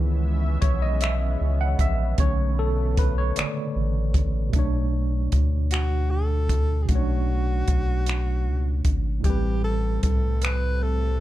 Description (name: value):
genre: slow six-eight R&B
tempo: 51 BPM (dotted quarters)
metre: 6/8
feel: straight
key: unclear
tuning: A4 = 441 Hz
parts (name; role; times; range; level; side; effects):
- tine electric piano; accompaniment; 0.0-11.2 s; A2 to F#5; -29 LUFS; right 1 dB; overdrive, fast stereo tremolo
- lush unison pad; sustained chords; 0.0-4.5, 9.2-11.2 s; B2 to E5; -36 LUFS; equal; chorus
- round analog bass; bass; 0.0-11.2 s; G#1 to D2; -23 LUFS; equal; none
- compact cocktail drum kit; drums; 0.6-10.6 s; finger snaps, hi-hat, kick drum; -24 LUFS; equal; none
- breathy tenor saxophone; melody; 5.7-11.2 s; F#4 to B4; -31 LUFS; left 1 dB; none
room: little or no reverb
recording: dark, warm production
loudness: -21 LUFS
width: side -14 dB against mid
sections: 0.0-4.5 A section; 4.5-11.2 B section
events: tine electric piano solo 0.0-4.5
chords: 0.0 C#m9; 2.2 Bm9; 9.2 Am9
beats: 1.01 | 2.18 3.36 | 4.54 5.71 | 6.89 8.07 | 9.24 10.42